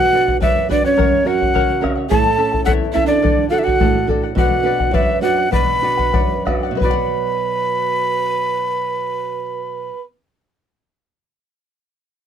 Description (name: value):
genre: andean folk, Andean ensemble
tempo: 85-106 BPM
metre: 2/4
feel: straight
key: B minor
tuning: A4 = 441 Hz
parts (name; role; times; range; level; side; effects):
- breathy quena; melody; 0.0-10.0 s; C#5 to B5; -19 LUFS; left 2 dB; none
- breathy mellow pan flute; second line; 0.0-10.0 s; C#4 to B4; -21 LUFS; right 11 dB; none
- charango; accompaniment; 0.0-10.4 s; E4 to A5; -24 LUFS; left 17 dB; none
- nylon-string guitar; accompaniment; 0.0-10.1 s; E2 to F#5; -23 LUFS; right 6 dB; none
- bombo; percussion; 0.3-7.1 s; none; -20 LUFS; left 2 dB; none
room: light reverb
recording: dry, close 1970s-style studio recording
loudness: -15 LUFS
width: side -8 dB against mid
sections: 0.0-6.8 A section; 6.8-9.6 B section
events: slowing down 4.4-6.8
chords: 0.0 Bm; 1.0 F#; 2.1 A; 3.2 D; 4.4 Bm